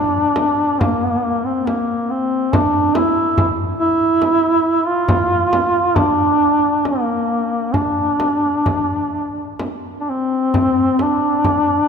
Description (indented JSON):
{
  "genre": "caucasian folk, Caucasian lament",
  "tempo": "62-72 BPM",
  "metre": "3/4",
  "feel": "rubato",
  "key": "D minor",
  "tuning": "A4 = 440 Hz",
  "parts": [
    { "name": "mellow duduk", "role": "melody", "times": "0.0-11.9 s", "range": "Bb3 to F4", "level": "-16 LUFS", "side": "equal", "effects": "none" },
    { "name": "frame drum", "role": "percussion", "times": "0.4-11.7 s", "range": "none", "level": "-22 LUFS", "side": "equal", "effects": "none" }
  ],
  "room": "wet church reverb, RT60 3.4 s",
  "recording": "minimal, uncompressed stereo recording",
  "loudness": "-15 LUFS",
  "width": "side -6 dB against mid",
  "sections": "0.0-10.5 A section; 10.5-11.9 B section",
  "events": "none",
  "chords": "none"
}